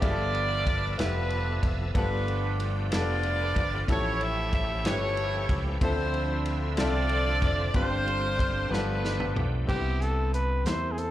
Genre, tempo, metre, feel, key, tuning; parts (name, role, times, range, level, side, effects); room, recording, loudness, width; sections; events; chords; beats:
slow gospel; 62 BPM (dotted quarters); 6/8; straight; A4 = 440 Hz
edgy saxophone section; melody; 0.0-9.6 s; D4 to E5; -30 LUFS; right 1 dB; slapback echo, tape echo
clear concert grand piano; accompaniment; 0.0-11.1 s; G2 to E5; -33 LUFS; left 3 dB; plate reverb, slapback echo
bright tonewheel organ; sustained chords; 0.0-9.7 s; D3 to E5; -37 LUFS; right 3 dB; slow rotary speaker, overdrive, chorus vibrato, plate reverb
fingered electric bass; bass; 0.0-11.1 s; F1 to E2; -30 LUFS; equal
warm soul drum kit; drums; 0.0-11.1 s; crash cymbal, hi-hat, kick drum, ride cymbal, snare drum, toms; -31 LUFS; equal
clear trumpet; melody; 9.7-11.1 s; G4 to C5; -31 LUFS; equal; plate reverb, slapback echo
light reverb; live gig heard through the venue's PA, club reverb; -25 LUFS; side -13 dB against mid
0.0-9.7 A section; 9.7-11.1 B section
drum fill 8.7-9.7
0.0 G13; 1.9 G9; 3.9 A7b13; 5.8 Dm9; 7.7 G7sus4; 8.7 G9; 9.7 Cmaj7
| 0.02 0.98 | 1.95 2.91 | 3.88 4.85 | 5.81 6.78 | 7.75 8.71 | 9.68 10.65